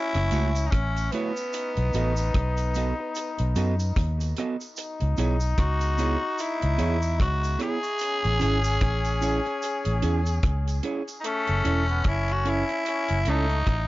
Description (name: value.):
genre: roots reggae.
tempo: 74 BPM.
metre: 4/4.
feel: swing 59% on 16ths.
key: F# dorian.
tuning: A4 = 442 Hz.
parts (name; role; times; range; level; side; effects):
raspy tenor saxophone; melody; 0.0-13.9 s; B3 to G#4; -28 LUFS; equal; dub echo.
brilliant trombone; second line; 0.0-13.6 s; A3 to D#4; -33 LUFS; left 4 dB; dub echo.
deep reggae drum kit; drums; 0.1-13.9 s; hi-hat, kick drum, rim click; -27 LUFS; equal; none.
vintage muted fingered electric bass; bass; 0.2-13.9 s; E1 to F#2; -25 LUFS; equal; none.
mellow electric guitar; accompaniment; 0.3-13.5 s; A3 to D#5; -32 LUFS; right 4 dB; dub echo.
cabasa; percussion; 0.3-11.2 s; none; -42 LUFS; right 3 dB; none.
room: light reverb.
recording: nothing above 7.5 kHz.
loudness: -23 LUFS.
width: side -18 dB against mid.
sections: 0.0-11.2 A section; 11.2-13.9 B section.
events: none.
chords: 0.0 F#m7; 1.5 B7; 4.8 C#m7; 8.0 Amaj7; 11.2 F#m7.